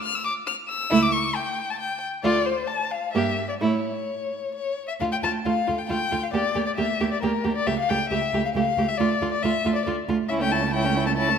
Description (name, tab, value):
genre	quick classical-period movement for string quartet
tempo	135 BPM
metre	3/4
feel	rubato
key	D minor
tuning	A4 = 440 Hz
part	warm violin	melody	0.0-11.4 s	Bb4 to F6	-25 LUFS	left 6 dB	none
part	warm violin	second line	0.9-11.4 s	C#4 to G4	-29 LUFS	right 1 dB	none
part	warm viola	accompaniment	0.9-11.4 s	A3 to C#4	-28 LUFS	right 5 dB	none
part	rich cello	bass	0.9-11.4 s	C#2 to A2	-29 LUFS	right 5 dB	none
room	moderate scoring stage reverb, RT60 2.0 s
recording	none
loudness	-22 LUFS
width	side -7 dB against mid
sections	0.0-5.0 A section; 5.0-11.4 B section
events	none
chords	0.0 N.C.; 0.9 A/C#; 2.2 Dm; 3.2 Gm; 3.6 A; 5.0 Dm; 6.3 Gm6/D; 7.7 A7/C#; 9.0 Dm; 10.3 A/C#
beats	0.03 0.47 | 0.91 1.35 1.80 | 2.25 2.70 3.16 | 3.62 4.09 4.55 | 5.01 5.46 5.90 | 6.34 6.79 7.23 | 7.68 8.12 8.56 | 9.00 9.44 9.87 | 10.31 10.74 11.18